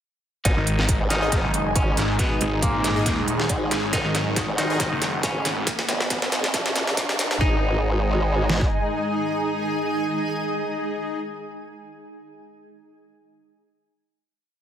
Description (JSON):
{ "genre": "heavy wobble dubstep", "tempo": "138 BPM", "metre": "4/4", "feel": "swing 55% on 16ths, half-time", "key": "unclear", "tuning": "A4 = 440 Hz", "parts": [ { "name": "clean electric guitar", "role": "melody", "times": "0.5-11.2 s", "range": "A#2 to D#4", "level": "-29 LUFS", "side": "equal", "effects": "phaser, digital delay" }, { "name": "lush unison pad", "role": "sustained chords", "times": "1.0-11.2 s", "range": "G#3 to G#5", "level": "-30 LUFS", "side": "equal", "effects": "chorus, phaser, sidechain pumping" }, { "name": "formant-sweep wobble bass", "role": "bass", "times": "0.5-8.7 s", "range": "G#1 to A#1", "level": "-24 LUFS", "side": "equal", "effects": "chorus, overdrive" }, { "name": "dubstep drum kit", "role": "drums", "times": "0.5-8.7 s", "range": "kick drum, snare drum", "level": "-25 LUFS", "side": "equal", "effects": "none" }, { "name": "dubstep drum kit", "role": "drums", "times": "0.5-7.4 s", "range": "hi-hat, snare drum", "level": "-26 LUFS", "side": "equal", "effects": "high-pass filter on snare, high-pass filter on hats" }, { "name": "riser", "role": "sound effects", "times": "4.0-7.4 s", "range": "none", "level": "-34 LUFS", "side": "right 1 dB", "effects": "none" }, { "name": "granular cloud pad", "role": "texture", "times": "1.6-11.3 s", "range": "D#4 to G#5", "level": "-30 LUFS", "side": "right 1 dB", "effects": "built-in reverb, sidechain pumping" }, { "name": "snarling distorted saw bass", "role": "bass", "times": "0.6-5.7 s", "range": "D#1 to G#1", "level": "-25 LUFS", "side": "equal", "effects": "overdrive" }, { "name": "supersaw stab", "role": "stabs", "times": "1.2-11.2 s", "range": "D#4 to D#5", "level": "-31 LUFS", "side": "left 3 dB", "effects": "digital delay" } ], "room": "light reverb, digital ambience", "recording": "dense, heavily limited modern master, high-pass filter", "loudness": "-20 LUFS", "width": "side -10 dB against mid", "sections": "0.5-7.4 build; 7.4-10.9 final chord", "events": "build-up 0.5-7.4; drum fill 0.5-7.4; filter sweep 0.5-7.4; riser 4.0-7.4", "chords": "0.5 G#5" }